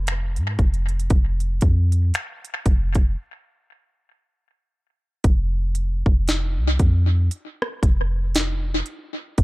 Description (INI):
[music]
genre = contemporary R&B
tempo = 58 BPM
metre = 4/4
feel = swing 58% on 16ths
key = F minor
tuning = A4 = 440 Hz
[part]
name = soft 808-style bass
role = bass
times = 0.0-9.4 s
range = F1 to Ab2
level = -20 LUFS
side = equal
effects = none
[part]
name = trap drum kit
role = drums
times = 0.1-9.4 s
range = finger snaps, hi-hat, kick drum, rim click, snare drum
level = -20 LUFS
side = equal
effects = tape echo
[sound]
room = little or no reverb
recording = echo-heavy mix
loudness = -19 LUFS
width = side -20 dB against mid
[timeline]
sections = 0.0-5.2 A section; 5.2-9.4 B section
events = break 3.2-5.2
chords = none